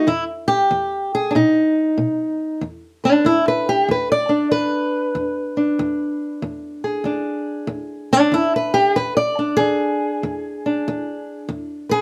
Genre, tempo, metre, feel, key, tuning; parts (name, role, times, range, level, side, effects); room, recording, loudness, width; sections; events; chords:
acoustic country blues, solo or duo; 95 BPM; 4/4; swing 64% on 8ths; E mixolydian; A4 = 442 Hz
fingerpicked old ladder-braced acoustic guitar; solo; 0.0-12.0 s; E2 to D5; -20 LUFS; equal
moderate studio reverb, RT60 0.6 s; -20 LUFS; mono
0.0-2.6 A section; 2.6-12.0 B section
steel-string acoustic guitar solo 2.6-12.0
0.1 N.C.; 2.6 E7